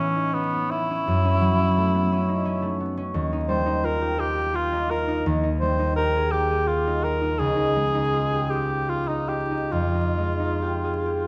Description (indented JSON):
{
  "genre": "classical, impressionist duo for cor anglais and harp",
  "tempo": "66-88 BPM",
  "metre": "3/4",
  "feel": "rubato",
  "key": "Eb mixolydian from 3.1 s",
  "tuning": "A4 = 439 Hz",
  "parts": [
    { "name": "warm cor anglais", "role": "melody", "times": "0.0-11.3 s", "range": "B3 to C5", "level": "-28 LUFS", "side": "equal", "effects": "none" },
    { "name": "concert harp", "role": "accompaniment", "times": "0.0-11.3 s", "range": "Db2 to Ab4", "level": "-26 LUFS", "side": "equal", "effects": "none" }
  ],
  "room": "moderate concert hall reverb, RT60 1.9 s",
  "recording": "dark, warm production, vinyl crackle",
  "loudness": "-24 LUFS",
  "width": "mono",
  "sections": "0.0-11.3 A section",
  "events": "none",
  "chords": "0.0 Aadd9; 1.1 F#m7; 3.1 Ebadd9; 7.4 Dbadd9; 9.7 Fm9"
}